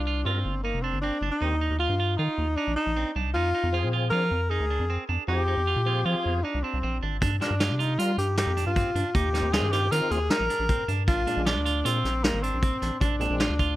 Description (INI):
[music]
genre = progressive instrumental, band music in an uneven meter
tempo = 155 BPM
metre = 5/4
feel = straight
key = F dorian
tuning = A4 = 440 Hz
[part]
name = breathy tenor saxophone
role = melody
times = 0.0-13.8 s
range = Bb3 to Bb4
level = -28 LUFS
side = left 1 dB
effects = plate reverb, tape echo
[part]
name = rubbery square bass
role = bass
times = 0.0-13.8 s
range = F1 to G3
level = -27 LUFS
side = equal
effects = none
[part]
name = clean electric guitar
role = arpeggios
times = 0.1-13.7 s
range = C4 to F4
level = -32 LUFS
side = right 8 dB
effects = plate reverb
[part]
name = overdriven tonewheel organ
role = accompaniment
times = 0.2-13.5 s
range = Bb2 to Bb4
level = -35 LUFS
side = left 2 dB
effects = chorus vibrato, slow rotary speaker, plate reverb
[part]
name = vintage brush drum kit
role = drums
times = 7.2-13.7 s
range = hi-hat, kick drum, snare drum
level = -28 LUFS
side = equal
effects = none
[sound]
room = light reverb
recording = none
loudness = -23 LUFS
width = side -15 dB against mid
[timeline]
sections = 0.0-13.8 A section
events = none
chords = 0.0 Gm7; 1.4 Eb6; 3.4 Fm; 7.2 Gm7; 9.1 Eb6; 11.1 Bb7